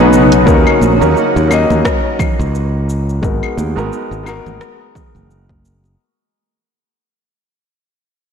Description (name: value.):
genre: sunset chillout.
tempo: 87 BPM.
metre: 4/4.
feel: swing 57% on 16ths.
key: Eb minor.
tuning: A4 = 440 Hz.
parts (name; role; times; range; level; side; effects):
warm grand piano; accompaniment; 0.0-6.0 s; Gb3 to Eb5; -15 LUFS; moving between left 6 dB and right 2 dB; auto-pan, digital delay.
modern bright fingered electric bass; bass; 0.0-5.9 s; Gb1 to Eb2; -15 LUFS; equal; tube saturation.
deep house drum kit; drums; 0.1-6.0 s; claves, hi-hat, rim click, shaker; -24 LUFS; left 3 dB; overdrive.
congas; percussion; 0.3-6.0 s; none; -23 LUFS; right 4 dB; none.
electronic kick drum; drums; 0.5-5.6 s; none; -16 LUFS; right 1 dB; overdrive.
room: moderate concert hall reverb, RT60 2.4 s.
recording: blown-out, overdriven recording, overdrive.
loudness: -10 LUFS.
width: side -7 dB against mid.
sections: 0.5-6.0 A section.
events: break 0.0-0.5; fade-out 0.5-6.0.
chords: 0.5 Ebm7; 3.2 Abm9.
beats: | 0.47 1.16 1.85 2.54 | 3.23 3.92 4.61 5.29.